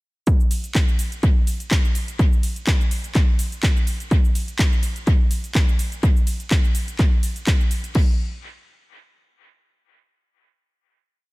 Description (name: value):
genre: house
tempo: 125 BPM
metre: 4/4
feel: swing 54% on 16ths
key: none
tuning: none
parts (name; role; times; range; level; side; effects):
- electronic kick drum; drums; 0.3-8.1 s; none; -18 LUFS; equal; overdrive
- house drum kit; drums; 0.3-8.1 s; cabasa, crash cymbal, handclaps, hi-hat, ride cymbal; -28 LUFS; equal; overdrive, sidechain pumping on hats, sidechain pumping on perc, sidechain pumping on cymbals, dub echo
room: little or no reverb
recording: echo-heavy mix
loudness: -18 LUFS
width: side -22 dB against mid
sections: 0.3-8.0 drop; 8.0-9.9 final hit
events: drop 0.3-8.0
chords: none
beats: | 0.27 0.75 1.23 1.71 | 2.19 2.67 3.15 3.63 | 4.11 4.59 5.07 5.55 | 6.03 6.51 6.99 7.47 | 7.95